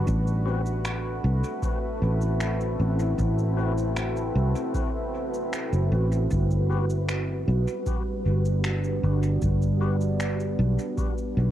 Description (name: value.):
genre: ambient dub.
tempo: 77 BPM.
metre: 4/4.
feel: straight.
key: A dorian.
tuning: A4 = 441 Hz.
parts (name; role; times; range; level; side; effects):
deep dark ambient pad; sustained chords; 0.0-11.5 s; G3 to B4; -29 LUFS; right 1 dB; chorus, built-in reverb, cassette tape, plate reverb.
fingered electric bass; bass; 0.0-11.5 s; F#1 to C2; -24 LUFS; equal; none.
electronic kick drum; drums; 0.1-11.1 s; none; -31 LUFS; equal; cassette tape.
electronic shaker and finger snaps; drums; 0.1-11.3 s; none; -36 LUFS; equal; cassette tape, dub echo.
tonewheel organ; stabs; 0.5-10.0 s; C4 to B4; -38 LUFS; left 10 dB; slow rotary speaker, cassette tape, dub echo, plate reverb.
room: light reverb.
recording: home recording on cassette.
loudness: -23 LUFS.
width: side -12 dB against mid.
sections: 0.0-11.5 A section.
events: none.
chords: 0.1 Am69; 6.3 Gmaj7.